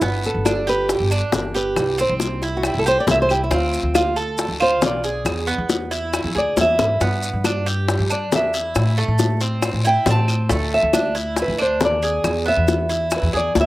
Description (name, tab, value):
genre	latin, Cuban son and guajira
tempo	137 BPM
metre	4/4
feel	straight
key	unclear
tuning	A4 = 440 Hz
part	Cuban tres	arpeggios	0.0-13.7 s	A3 to A4	-24 LUFS	right 3 dB	slapback echo
part	upright bass	bass	0.0-13.7 s	G1 to A2	-23 LUFS	equal	none
part	bongos	percussion	0.0-13.7 s	none	-23 LUFS	left 4 dB	none
part	guiro	percussion	0.0-13.7 s	none	-32 LUFS	left 4 dB	none
part	maracas	percussion	0.0-13.7 s	none	-33 LUFS	right 4 dB	none
part	nylon-string guitar	melody	0.3-13.7 s	E4 to A5	-20 LUFS	equal	none
part	claves	percussion	0.5-13.3 s	none	-33 LUFS	right 2 dB	none
room	little or no reverb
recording	recorded outdoors, with no room sound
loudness	-17 LUFS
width	side -17 dB against mid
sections	0.0-13.7 A section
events	nylon-string guitar solo 0.0-13.7; drum fill 6.6-7.0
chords	0.0 G; 1.8 C; 3.5 Dm7; 5.3 E; 7.0 G; 8.8 Am; 10.5 Dsus2; 12.2 E